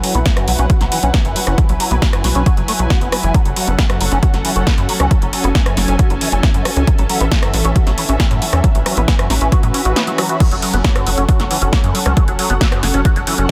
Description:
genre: uplifting trance.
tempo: 136 BPM.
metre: 4/4.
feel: straight.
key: F# minor.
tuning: A4 = 440 Hz.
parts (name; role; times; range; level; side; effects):
lush unison pad; sustained chords; 0.0-13.5 s; E3 to G#5; -24 LUFS; equal; chorus, phaser, sidechain pumping.
liquid acid bass; arpeggios; 0.0-13.4 s; F#2 to F#4; -24 LUFS; equal; ensemble chorus, sidechain pumping, tape echo.
punchy analog drum machine; drums; 0.0-13.5 s; crash cymbal, hi-hat, rim click, snare drum; -23 LUFS; equal; overdrive.
tight sequencer bass; bass; 0.1-13.5 s; F#1 to A2; -20 LUFS; equal; sidechain pumping.
electronic kick drum; drums; 0.3-13.1 s; none; -17 LUFS; equal; overdrive.
swell; sound effects; 9.7-10.4 s; none; -33 LUFS; equal; none.
room: little or no reverb.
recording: dense, heavily limited modern master.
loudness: -15 LUFS.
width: mono.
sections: 0.0-13.5 A section.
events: filter sweep on acid bass 0.0-13.5; swell 9.7-10.4.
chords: 0.0 F#m; 6.9 A; 10.4 F#m.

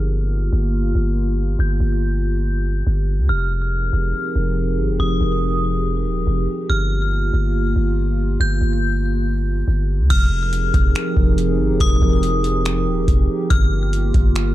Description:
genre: hip hop, atmospheric cloud-rap.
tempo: 141 BPM.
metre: 4/4.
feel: half-time.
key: F minor.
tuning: A4 = 440 Hz.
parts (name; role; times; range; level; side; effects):
metallic FM bell; melody; 0.0-14.5 s; Eb6 to G6; -28 LUFS; left 2 dB; chorus, phaser, low-pass filter, ping-pong delay.
dark analog pad; sustained chords; 0.0-14.5 s; F3 to Bb4; -23 LUFS; equal; chorus, sidechain pumping, low-pass filter.
long sustained 808-style bass; bass; 0.0-14.5 s; Eb1 to D2; -19 LUFS; equal; none.
booming analog drum machine; drums; 10.1-14.5 s; crash cymbal, finger snaps, hi-hat, kick drum; -18 LUFS; equal; none.
room: little or no reverb.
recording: dark, warm production.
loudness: -16 LUFS.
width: side -15 dB against mid.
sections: 0.0-10.1 A section; 10.1-14.5 B section.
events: filter sweep 0.0-10.1.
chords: 0.0 Gm7; 3.3 Fm11; 6.7 Gm7; 10.1 Fm11; 13.5 Gm7.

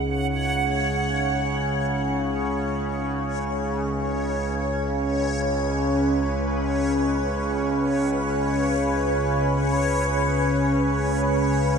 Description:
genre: dark ambient drone.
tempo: free time.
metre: none.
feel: none.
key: unclear.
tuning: A4 = 440 Hz.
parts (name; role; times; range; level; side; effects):
sweeping resonant pad; sustained chords; 0.0-11.8 s; C#3 to C#5; -26 LUFS; equal; chorus, shimmer reverb.
bronze singing bowl; arpeggios; 0.0-3.3 s; G#4; -42 LUFS; left 4 dB; none.
analog drone; drone; 0.0-11.8 s; C#2 to C#3; -24 LUFS; equal; chorus.
backwards swelling texture; texture; 0.0-11.8 s; C#5; -28 LUFS; equal; built-in reverb, shimmer reverb.
room: wet huge ambient reverb, RT60 7.8 s.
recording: none.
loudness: -21 LUFS.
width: side -6 dB against mid.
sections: 0.0-11.8 A section.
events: none.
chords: 0.0 G#madd11/C#.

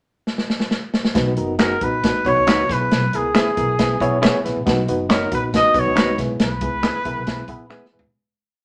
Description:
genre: uptempo 1960s-style soul.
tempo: 137 BPM.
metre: 4/4.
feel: straight.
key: unclear.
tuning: A4 = 441 Hz.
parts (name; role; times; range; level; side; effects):
natural country drum kit; drums; 0.3-8.1 s; hi-hat, kick drum, snare drum, toms; -23 LUFS; equal; none.
reed electric piano; accompaniment; 1.1-8.1 s; B3 to C#5; -25 LUFS; equal; overdrive, fast tremolo.
upright bass; bass; 1.2-8.1 s; F#1 to C#2; -29 LUFS; equal; none.
clear trumpet; melody; 1.6-7.7 s; G#4 to D#5; -23 LUFS; equal; none.
semi-hollow electric guitar; stabs; 1.6-7.9 s; D#4 to B4; -27 LUFS; equal; warbly pitch drift.
finger snap; percussion; 1.6-7.8 s; none; -28 LUFS; equal; none.
congas; percussion; 4.7-8.1 s; none; -39 LUFS; equal; none.
room: wet studio reverb, RT60 0.6 s.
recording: none.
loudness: -19 LUFS.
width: mono.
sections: 0.0-1.1 pickup bar; 1.1-8.1 verse.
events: drum fill 0.3-1.1, 7.7-8.1; fade-out 6.4-8.1.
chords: 0.0 N.C.; 1.1 B; 2.7 E/B; 4.7 B; 6.2 E/B.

